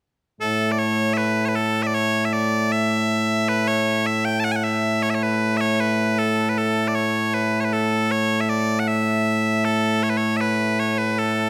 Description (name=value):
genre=scottish traditional, Scottish pipe music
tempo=78 BPM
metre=2/4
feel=straight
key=A major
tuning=A4 = 439 Hz
part: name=loud bright bagpipes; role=solo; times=0.4-11.5 s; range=A2 to A5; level=-21 LUFS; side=equal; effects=none
room=moderate concert hall reverb, RT60 2.4 s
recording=close, detailed microphones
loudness=-21 LUFS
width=mono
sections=0.4-11.5 A section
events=none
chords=none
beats=| 0.40 1.17 | 1.94 2.71 | 3.48 4.25 | 5.02 5.79 | 6.55 7.33 | 8.09 8.86 | 9.63 10.40 | 11.17